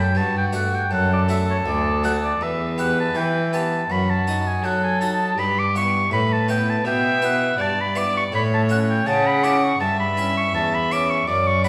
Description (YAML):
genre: classical, baroque-style sonata movement with continuo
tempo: 81 BPM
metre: 4/4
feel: straight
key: unclear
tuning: A4 = 441 Hz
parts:
  - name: dark violin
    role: melody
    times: 0.0-11.7 s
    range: F#4 to F#5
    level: -29 LUFS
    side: equal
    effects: none
  - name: clear oboe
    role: second line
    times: 0.0-11.7 s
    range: C#5 to D6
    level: -25 LUFS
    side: equal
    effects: none
  - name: harpsichord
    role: accompaniment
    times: 0.0-11.7 s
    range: D2 to E5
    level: -30 LUFS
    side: equal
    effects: none
  - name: rich cello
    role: bass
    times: 0.0-11.7 s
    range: D2 to F#3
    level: -25 LUFS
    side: equal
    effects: none
room: wet recital hall reverb, RT60 1.4 s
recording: recorded in a church or concert hall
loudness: -21 LUFS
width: mono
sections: 0.0-11.7 A section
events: none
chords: 0.0 D/F#; 2.4 Em; 3.9 D#dim/F#; 5.4 Em/G; 8.3 A; 9.8 Em6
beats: 0.16 0.91 1.66 | 2.41 3.15 3.90 4.64 | 5.38 6.12 6.85 7.59 | 8.33 9.06 9.80 10.54 | 11.28